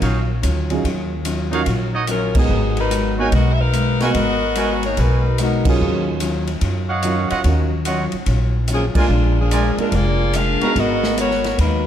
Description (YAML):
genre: jazz, big band swing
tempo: 145 BPM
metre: 4/4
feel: swing 66% on 8ths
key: Eb minor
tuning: A4 = 440 Hz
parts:
  - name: vintage hollow-body jazz guitar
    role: accompaniment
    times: 0.0-11.9 s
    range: Bb2 to Bb4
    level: -26 LUFS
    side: left 2 dB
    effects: none
  - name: clear trumpet section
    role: stabs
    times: 0.0-10.7 s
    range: Eb4 to Bb5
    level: -26 LUFS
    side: right 4 dB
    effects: none
  - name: upright bass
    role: bass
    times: 0.0-11.9 s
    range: F1 to Gb2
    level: -20 LUFS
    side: equal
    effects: none
  - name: swinging big-band drum kit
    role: drums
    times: 0.0-11.7 s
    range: crash cymbal, hi-hat, kick drum, ride cymbal, snare drum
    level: -25 LUFS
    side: equal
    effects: none
  - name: warm grand piano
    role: accompaniment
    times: 0.7-11.2 s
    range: Gb3 to Cb5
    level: -26 LUFS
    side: right 5 dB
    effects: none
  - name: clear saxophone section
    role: melody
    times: 2.1-6.2, 8.7-11.9 s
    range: F3 to F5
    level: -21 LUFS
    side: left 2 dB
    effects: none
room: light reverb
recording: dark, warm production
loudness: -16 LUFS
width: side -10 dB against mid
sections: 0.0-11.9 A section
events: band accent 2.3, 5.6, 8.9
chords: 0.0 Ebm9; 2.5 Abm9; 5.8 Ebm9; 9.1 Bb7; 10.8 Abm9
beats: 0.02 0.43 | 0.84 1.26 1.67 2.08 | 2.49 2.91 3.32 3.73 | 4.14 4.56 4.97 5.38 | 5.80 6.21 6.62 7.04 | 7.45 7.86 8.28 8.69 | 9.10 9.52 9.93 10.35 | 10.76 11.17 11.59